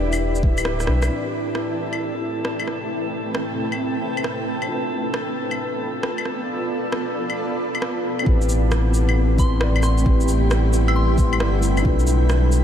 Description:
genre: future garage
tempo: 134 BPM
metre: 4/4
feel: swing 66% on 16ths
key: A minor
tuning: A4 = 442 Hz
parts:
  - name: muted felt-like synth keys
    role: accompaniment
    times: 0.0-12.6 s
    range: A2 to E5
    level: -28 LUFS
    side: left 1 dB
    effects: chorus, sidechain pumping, diffuse ambient delay
  - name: granular cloud pad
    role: sustained chords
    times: 0.0-12.6 s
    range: G3 to B5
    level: -25 LUFS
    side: equal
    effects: built-in reverb, sidechain pumping
  - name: warm sub bass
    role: bass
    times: 0.0-1.1, 8.3-12.6 s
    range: D1 to B1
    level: -19 LUFS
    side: equal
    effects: sidechain pumping
  - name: drifting glass-harmonics texture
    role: texture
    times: 0.0-12.6 s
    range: B3 to B6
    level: -32 LUFS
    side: left 1 dB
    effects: chorus, built-in reverb
  - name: electronic shaker, claves and rim click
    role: drums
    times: 0.1-12.6 s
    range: none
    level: -28 LUFS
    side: left 1 dB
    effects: overdrive
  - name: electronic kick drum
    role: drums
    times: 0.4-0.6, 8.3-12.0 s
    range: none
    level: -19 LUFS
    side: equal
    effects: overdrive
  - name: soft synth bell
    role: melody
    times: 9.4-11.6 s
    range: C6 to E6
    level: -30 LUFS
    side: equal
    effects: chorus, phaser, ping-pong delay
room: moderate huge ambient reverb, RT60 7.2 s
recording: dreamy mix soaked in reverb, lossy compression artefacts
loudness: -19 LUFS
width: side -9 dB against mid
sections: 0.0-1.1 A section; 1.1-8.3 B section; 8.3-12.6 C section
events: drum fill 0.8-1.1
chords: 0.0 Em7; 1.1 Am7; 4.7 Bm7b5; 8.3 Am7; 11.8 Bm7b5

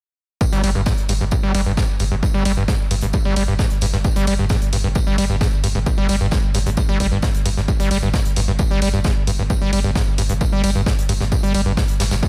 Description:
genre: driving peak-time techno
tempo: 132 BPM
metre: 4/4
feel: straight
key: unclear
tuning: A4 = 440 Hz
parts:
  - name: screaming distorted acid line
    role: riff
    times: 0.4-12.3 s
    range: G2 to G3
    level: -24 LUFS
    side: equal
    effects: distortion, chorus, sidechain pumping, dub echo
  - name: electronic kick drum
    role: drums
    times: 0.4-12.3 s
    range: none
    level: -22 LUFS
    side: equal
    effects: none
  - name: huge arena drum kit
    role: drums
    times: 0.4-12.3 s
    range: hi-hat, snare drum, tambourine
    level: -35 LUFS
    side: equal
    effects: sidechain pumping on hats, high-pass filter on hats, high-pass filter on snare, sidechain pumping on perc, high-pass filter on perc, high-pass filter on room
  - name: saturated sub bass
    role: bass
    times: 0.5-12.2 s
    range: G1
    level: -25 LUFS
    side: equal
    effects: sidechain pumping, low-pass filter
  - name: electronic hi-hat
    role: drums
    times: 0.6-12.1 s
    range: none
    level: -31 LUFS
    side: equal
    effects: sidechain pumping on hats
room: light reverb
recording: none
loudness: -19 LUFS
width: mono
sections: 0.4-12.3 A section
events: none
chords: 0.4 G5

